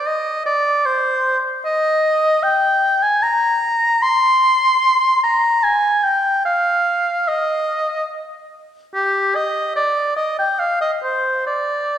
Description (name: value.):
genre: classical, baroque-style fantasia for unaccompanied oboe.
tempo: 66-77 BPM.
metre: 4/4.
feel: rubato.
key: Eb major.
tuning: A4 = 441 Hz.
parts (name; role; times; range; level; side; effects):
clear oboe; solo; 0.0-12.0 s; G4 to C6; -15 LUFS; equal; none.
room: wet concert hall reverb, RT60 2.1 s.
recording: heard from further back in the room.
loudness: -15 LUFS.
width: side -10 dB against mid.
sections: 0.0-12.0 A section.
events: none.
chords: none.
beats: 0.07 0.86 1.64 | 2.43 3.22 4.03 4.83 | 5.64 6.47 7.28 8.11 | 8.95 9.77 10.61 11.48.